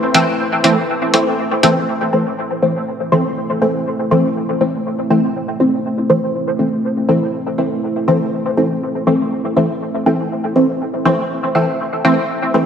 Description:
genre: dub techno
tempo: 121 BPM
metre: 4/4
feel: swing 54% on 16ths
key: A minor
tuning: A4 = 442 Hz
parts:
  - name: deep dark ambient pad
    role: sustained chords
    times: 0.0-12.7 s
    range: A3 to E5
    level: -22 LUFS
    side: equal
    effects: chorus, built-in reverb, vintage 12-bit sampler grit
  - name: filtered dub chord stab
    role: stabs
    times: 0.1-12.7 s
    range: E3 to C4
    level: -15 LUFS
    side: equal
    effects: chorus, phaser, dub echo
  - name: electronic hi-hat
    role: drums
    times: 0.1-1.7 s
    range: none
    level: -16 LUFS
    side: equal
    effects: low-pass filter on hats, low-pass filter on room
room: wet lush hall reverb, RT60 1.7 s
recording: none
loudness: -14 LUFS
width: side -8 dB against mid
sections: 0.0-1.9 A section; 1.9-12.7 B section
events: none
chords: 0.0 Am

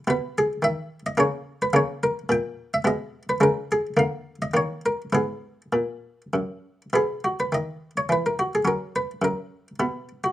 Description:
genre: classical, baroque-style suite movement for harpsichord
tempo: 99-110 BPM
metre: 3/4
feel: rubato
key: G# minor, B major from 6.9 s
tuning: A4 = 444 Hz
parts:
  - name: buff-stop harpsichord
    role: solo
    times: 0.0-10.3 s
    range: F#2 to G5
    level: -22 LUFS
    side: equal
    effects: none
room: light reverb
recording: none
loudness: -22 LUFS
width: side -14 dB against mid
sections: 0.0-6.9 A section; 6.9-10.3 A section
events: none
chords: 0.1 Badd11; 1.2 A#m/C#; 1.7 A#m6; 2.9 G#m/B; 3.4 C#5; 4.0 A#/D; 4.5 D#5; 5.1 G#m; 6.9 B; 8.7 F#; 9.8 N.C.

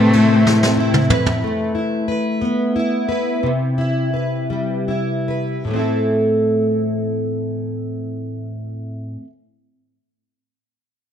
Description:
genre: six-eight pop ballad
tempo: 48-62 BPM (dotted quarters)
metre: 6/8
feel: straight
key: A minor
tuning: A4 = 440 Hz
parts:
  - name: clear cello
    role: melody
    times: 0.0-1.1 s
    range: A3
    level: -15 LUFS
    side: left 1 dB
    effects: none
  - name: fingerpicked plugged-in steel-string acoustic guitar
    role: accompaniment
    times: 0.0-9.3 s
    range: A2 to B4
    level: -18 LUFS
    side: equal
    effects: double-tracked left and right
  - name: lush unison pad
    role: sustained chords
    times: 0.0-1.4 s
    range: C3 to C4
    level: -24 LUFS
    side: equal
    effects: chorus, tremolo
  - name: vintage brush drum kit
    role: drums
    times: 0.1-1.4 s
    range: ride cymbal, snare drum, toms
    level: -20 LUFS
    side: right 1 dB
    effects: none
room: light reverb, small room ambience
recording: dark, warm production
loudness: -17 LUFS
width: side -8 dB against mid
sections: 0.0-1.4 A section; 1.4-5.7 B section; 5.7-10.7 C section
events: drum fill 0.5-1.4; slowing down 1.4-5.7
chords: 0.0 Amadd9; 1.4 Asus2; 3.4 Cmaj7; 5.7 Am

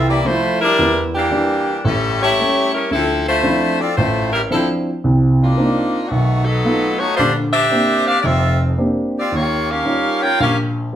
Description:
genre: jazz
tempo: 112 BPM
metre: 4/4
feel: swing 68% on 8ths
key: unclear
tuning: A4 = 440 Hz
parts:
  - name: edgy saxophone section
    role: melody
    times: 0.0-10.6 s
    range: D#3 to G5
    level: -16 LUFS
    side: left 1 dB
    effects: none
  - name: warm baby grand piano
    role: accompaniment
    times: 0.0-11.0 s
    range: F1 to G4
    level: -18 LUFS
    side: right 1 dB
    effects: none
room: wet large studio reverb, RT60 0.8 s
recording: band playing live in one room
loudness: -14 LUFS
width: side -10 dB against mid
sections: 0.0-11.0 A section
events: none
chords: 0.0 Fmaj7; 0.8 Em7b5; 1.8 A7; 2.9 Dm9; 5.0 Cm9; 6.1 B7#11; 7.2 Bb69; 9.3 Eb9

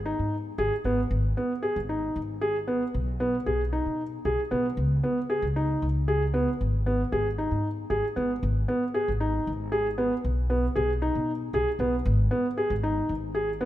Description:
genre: contemporary instrumental, contemporary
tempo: 230 BPM (eighths)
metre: 7/8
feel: straight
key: G# minor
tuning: A4 = 439 Hz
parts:
  - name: upright bass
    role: bass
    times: 0.0-13.7 s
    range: G#1 to B2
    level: -28 LUFS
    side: equal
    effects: none
  - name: felt-muted upright piano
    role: arpeggios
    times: 0.1-13.7 s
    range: B3 to G#4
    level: -27 LUFS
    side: equal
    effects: none
room: light reverb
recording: none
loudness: -24 LUFS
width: side -14 dB against mid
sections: 0.0-13.7 A section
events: none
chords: 0.0 G#m; 2.9 B6; 4.8 C#sus2; 6.6 G#m; 10.2 B6; 12.1 G#5

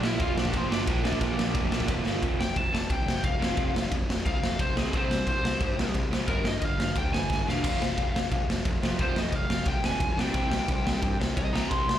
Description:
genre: punk rock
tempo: 177 BPM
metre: 4/4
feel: straight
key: unclear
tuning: A4 = 441 Hz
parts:
  - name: lead guitar through a small cranked amp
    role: melody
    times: 0.0-12.0 s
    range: C4 to C6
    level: -32 LUFS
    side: left 1 dB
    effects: overdrive
  - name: crunchy overdriven guitar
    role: riff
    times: 0.0-12.0 s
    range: F2 to C4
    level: -32 LUFS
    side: right 1 dB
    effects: none
  - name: fuzz picked electric bass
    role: bass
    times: 0.0-12.0 s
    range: E1 to G2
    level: -31 LUFS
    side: equal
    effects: overdrive
  - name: raw garage drum kit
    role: drums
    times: 0.0-12.0 s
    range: crash cymbal, kick drum, ride cymbal, snare drum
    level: -28 LUFS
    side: equal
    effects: none
room: small room ambience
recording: live gig heard through the venue's PA, club reverb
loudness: -25 LUFS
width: side -11 dB against mid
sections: 0.0-2.2 A section; 2.2-12.0 B section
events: drum fill 2.1, 7.3-7.6; lead electric guitar solo 2.2-12.0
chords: 0.0 Bb; 2.2 F5; 4.8 C5; 6.3 G5; 7.6 F5; 10.2 C5

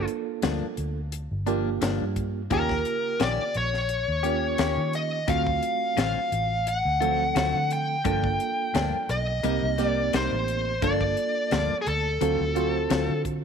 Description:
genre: straight-eighth soul blues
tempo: 87 BPM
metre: 4/4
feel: swing 53% on 16ths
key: G minor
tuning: A4 = 441 Hz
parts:
  - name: smooth overdriven lead guitar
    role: melody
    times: 0.0-13.2 s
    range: Ab4 to G5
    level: -26 LUFS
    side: left 2 dB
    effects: none
  - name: reed electric piano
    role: accompaniment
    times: 0.0-13.4 s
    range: Db3 to C5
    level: -30 LUFS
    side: right 15 dB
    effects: fast tremolo
  - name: vintage muted fingered electric bass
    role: bass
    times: 0.0-13.4 s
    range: G1 to Eb3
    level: -30 LUFS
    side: equal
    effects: none
  - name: tight funk drum kit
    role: drums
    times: 0.1-13.4 s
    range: hi-hat, kick drum, snare drum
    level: -31 LUFS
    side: left 1 dB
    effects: none
  - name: direct-recorded clean electric guitar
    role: stabs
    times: 0.4-13.1 s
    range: G2 to G4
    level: -32 LUFS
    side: left 11 dB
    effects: phaser
room: light reverb, small room ambience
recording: 1960s-style stereo with parts hard left and right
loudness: -23 LUFS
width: side -6 dB against mid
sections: 0.0-13.4 A section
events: none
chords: 0.0 Gm7; 2.5 Eb7; 5.3 D7#9; 8.1 Gm7; 9.4 Cm7; 10.8 Gm7; 12.2 D7#9

